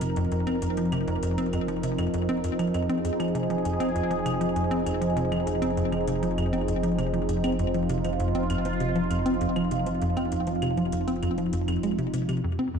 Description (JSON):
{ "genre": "ambient, sequencer-driven space music", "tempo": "99 BPM", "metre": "4/4", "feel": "straight", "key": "F minor", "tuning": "A4 = 440 Hz", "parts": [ { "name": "sweeping resonant pad", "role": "sustained chords", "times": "0.0-12.8 s", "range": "F2 to Bb4", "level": "-27 LUFS", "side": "right 1 dB", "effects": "chorus" }, { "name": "tight sequencer bass", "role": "riff", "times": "0.0-12.8 s", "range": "F2 to C4", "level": "-28 LUFS", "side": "left 1 dB", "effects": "analog chorus, ping-pong delay" }, { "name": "fat analog bass", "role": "bass", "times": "0.0-12.4 s", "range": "F1", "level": "-35 LUFS", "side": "equal", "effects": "none" }, { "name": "electronic hi-hat and claves", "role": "percussion", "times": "0.0-12.4 s", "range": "none", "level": "-43 LUFS", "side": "left 2 dB", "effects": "overdrive, ping-pong delay" }, { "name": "bubbling stepped-filter texture", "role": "texture", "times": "12.4-12.8 s", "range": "none", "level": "barely audible", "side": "none", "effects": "none" } ], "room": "wet concert hall reverb, RT60 2.5 s", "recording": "dark, warm production", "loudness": "-24 LUFS", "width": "side -6 dB against mid", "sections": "0.0-12.4 A section", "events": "none", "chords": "0.0 Fm7" }